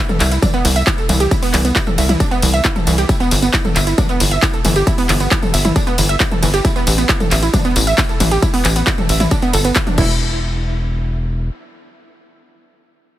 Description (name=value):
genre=uplifting trance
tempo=135 BPM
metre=4/4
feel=straight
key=unclear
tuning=A4 = 440 Hz
part: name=wide unison pluck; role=arpeggios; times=0.0-10.4 s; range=E3 to E5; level=-19 LUFS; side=right 3 dB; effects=sidechain pumping, digital delay
part: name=big-room dance drum kit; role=drums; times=0.1-10.1 s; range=crash cymbal, handclaps, hi-hat, ride cymbal, tambourine, toms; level=-18 LUFS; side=left 1 dB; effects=none
part: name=tight sequencer bass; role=bass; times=0.2-11.5 s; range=E1 to C2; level=-17 LUFS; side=equal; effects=sidechain pumping
part: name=electronic kick drum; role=drums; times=0.4-10.1 s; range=none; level=-17 LUFS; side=equal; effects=none
room=little or no reverb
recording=heavily compressed radio sound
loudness=-13 LUFS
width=side -13 dB against mid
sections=0.0-10.2 A section; 10.2-13.2 B section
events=drop 0.0-10.2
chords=0.0 C; 3.1 Gadd9; 10.0 N.C.